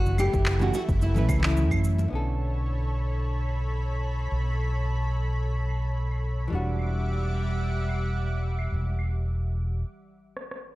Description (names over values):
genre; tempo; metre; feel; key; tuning
sunset chillout; 109 BPM; 4/4; swing 54% on 16ths; B minor; A4 = 437 Hz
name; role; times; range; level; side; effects
nylon-string guitar; melody; 0.0-1.8 s; E4 to G4; -31 LUFS; equal; tape echo
lush unison pad; sustained chords; 0.0-9.8 s; E3 to D6; -36 LUFS; equal; chorus
fretless electric bass; bass; 0.0-9.8 s; E1 to F#2; -26 LUFS; equal; tube saturation, ensemble chorus
electronic cabasa, claves, handclaps and rim click; drums; 0.1-10.6 s; none; -33 LUFS; right 1 dB; low-pass filter on perc, low-pass filter on snare, low-pass filter on room
congas; percussion; 0.1-2.1 s; none; -37 LUFS; left 3 dB; none
electronic kick drum; drums; 0.3-1.8 s; none; -29 LUFS; equal; none
hollow-body jazz guitar; accompaniment; 0.6-10.8 s; D3 to B4; -34 LUFS; right 1 dB; auto-pan, tape echo
room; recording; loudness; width
digital ambience; dry, gritty hardware recording, faint mains hum; -24 LUFS; side -18 dB against mid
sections
0.0-2.1 A section; 2.1-10.8 B section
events
break 9.8-10.8; drum fill 10.4-10.8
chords
0.0 F#m7; 2.1 Bm9; 6.5 Em9